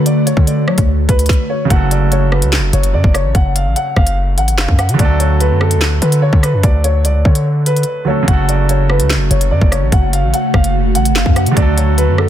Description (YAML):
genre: hip hop, drill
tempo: 146 BPM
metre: 4/4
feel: half-time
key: F# minor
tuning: A4 = 441 Hz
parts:
  - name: dark grand piano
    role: melody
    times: 0.0-12.3 s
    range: A4 to F#5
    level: -20 LUFS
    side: left 1 dB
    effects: ping-pong delay
  - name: clear grand piano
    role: accompaniment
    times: 0.0-12.3 s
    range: C#3 to A4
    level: -20 LUFS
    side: right 4 dB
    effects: none
  - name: ethereal airy pad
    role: sustained chords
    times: 0.0-1.3, 9.0-12.3 s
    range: C#3 to F#4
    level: -20 LUFS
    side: equal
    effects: ensemble chorus, built-in reverb
  - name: hard-hitting 808-style bass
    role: bass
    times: 0.0-12.3 s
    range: F#1 to F#3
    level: -14 LUFS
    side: equal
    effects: none
  - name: drill drum kit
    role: drums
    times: 0.1-12.3 s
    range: handclaps, hi-hat, kick drum, rim click, snare drum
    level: -14 LUFS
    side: equal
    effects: none
room: little or no reverb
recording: dense, heavily limited modern master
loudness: -11 LUFS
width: side -11 dB against mid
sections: 0.0-1.7 A section; 1.7-12.3 B section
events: silent gap 7.9-8.3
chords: 0.0 D; 1.7 F#m; 5.0 D; 8.3 F#m; 11.6 D